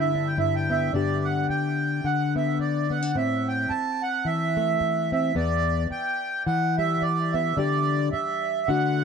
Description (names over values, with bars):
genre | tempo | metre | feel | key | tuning
folk | 109 BPM | 4/4 | swing 57% on 8ths | G major | A4 = 440 Hz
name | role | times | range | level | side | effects
accordion | melody | 0.0-9.0 s | D5 to A5 | -25 LUFS | right 4 dB | tape echo
nylon-string guitar | accompaniment | 0.0-9.0 s | E2 to G4 | -25 LUFS | left 3 dB | none
room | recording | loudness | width
light reverb | dark, warm production | -22 LUFS | side -6 dB against mid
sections
0.9-9.0 A section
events
none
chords
0.0 G6; 0.9 G; 3.2 Am; 5.4 Em; 7.6 Dsus4